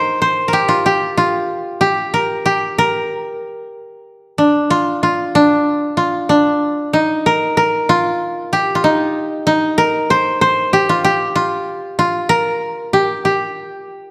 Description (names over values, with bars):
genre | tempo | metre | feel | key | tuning
andean folk | 94 BPM | 4/4 | straight | unclear | A4 = 441 Hz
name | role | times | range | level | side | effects
koto | solo | 0.0-14.1 s | D4 to C5 | -16 LUFS | equal | none
room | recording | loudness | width
moderate scoring stage reverb, RT60 1.6 s | dark, warm production | -16 LUFS | mono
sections
0.0-14.1 A section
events
none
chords
none